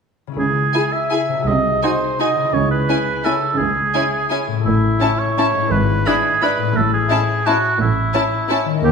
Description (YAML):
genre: classical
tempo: 170 BPM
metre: 3/4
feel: uneven beats, rubato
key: C# minor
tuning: A4 = 439 Hz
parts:
  - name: concert harp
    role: arpeggios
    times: 0.3-8.9 s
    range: G#2 to B4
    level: -23 LUFS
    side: left 6 dB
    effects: none
  - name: warm oboe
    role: second line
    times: 0.4-8.9 s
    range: E4 to E5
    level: -19 LUFS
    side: right 2 dB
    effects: none
  - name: clear chamber double bass section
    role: bass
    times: 0.4-8.9 s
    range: G#1 to D#2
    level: -24 LUFS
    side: right 3 dB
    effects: none
  - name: rich chamber cello section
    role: bass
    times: 0.4-8.9 s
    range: D#2 to C#3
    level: -23 LUFS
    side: right 2 dB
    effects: none
  - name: rich studio violin section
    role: melody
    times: 0.7-8.6 s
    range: G#5 to B5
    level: -26 LUFS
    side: left 4 dB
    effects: none
  - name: rich chamber violin section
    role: second line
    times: 0.7-8.6 s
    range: E4 to G#4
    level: -25 LUFS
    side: left 3 dB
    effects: none
  - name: rich studio viola section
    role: accompaniment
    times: 0.7-8.6 s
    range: C#4 to E4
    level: -25 LUFS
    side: right 2 dB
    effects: none
room: wet scoring stage reverb, RT60 1.6 s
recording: minimal, uncompressed stereo recording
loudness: -15 LUFS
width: side -5 dB against mid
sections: 0.4-8.9 A section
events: none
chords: 0.4 C#m; 1.5 G#7/B#; 2.5 C#m; 4.7 A; 5.7 E7/G#; 6.8 A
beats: | 0.39 0.74 1.11 | 1.47 1.82 2.19 | 2.54 2.88 3.25 | 3.59 3.94 4.31 | 4.65 5.01 5.37 | 5.71 6.06 6.42 | 6.76 7.11 7.46 | 7.80 8.14 8.50 | 8.84